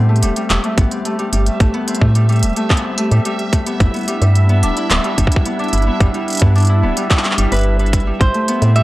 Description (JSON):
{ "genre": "IDM", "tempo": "109 BPM", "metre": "4/4", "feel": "straight", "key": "A minor", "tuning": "A4 = 441 Hz", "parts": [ { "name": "hollow soft pad", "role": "sustained chords", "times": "0.0-8.8 s", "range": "G3 to G4", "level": "-26 LUFS", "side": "right 1 dB", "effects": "ensemble chorus" }, { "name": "Celtic harp", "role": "arpeggios", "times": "0.0-8.8 s", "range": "G3 to B4", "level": "-20 LUFS", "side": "left 2 dB", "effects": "tape echo" }, { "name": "woody FM bass", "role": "bass", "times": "0.0-8.8 s", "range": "D1 to A2", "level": "-13 LUFS", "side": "equal", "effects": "none" }, { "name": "bubbling stepped-filter texture", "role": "texture", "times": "0.0-8.8 s", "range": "E5", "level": "-26 LUFS", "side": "right 5 dB", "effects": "chorus, built-in reverb, sidechain pumping" }, { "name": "organic electronic drum kit", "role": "drums", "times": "0.2-8.8 s", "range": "handclaps, hi-hat", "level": "-20 LUFS", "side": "equal", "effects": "overdrive" }, { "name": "electronic kick drum", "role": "drums", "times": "0.8-8.3 s", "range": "none", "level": "-15 LUFS", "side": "equal", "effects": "overdrive" }, { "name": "electric guitar at the edge of break-up", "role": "melody", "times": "8.2-8.8 s", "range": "C5 to E5", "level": "-18 LUFS", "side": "right 2 dB", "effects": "none" } ], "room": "little or no reverb", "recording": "dry, gritty hardware recording, cassette tape", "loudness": "-13 LUFS", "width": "side -17 dB against mid", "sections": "0.0-8.8 A section", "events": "none", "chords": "0.0 Am9; 3.8 Em7; 8.2 Am9", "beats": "0.50 1.05 | 1.60 2.15 2.70 3.25 | 3.80 4.35 4.90 5.46 | 6.00 6.56 7.11 7.66 | 8.21 8.76" }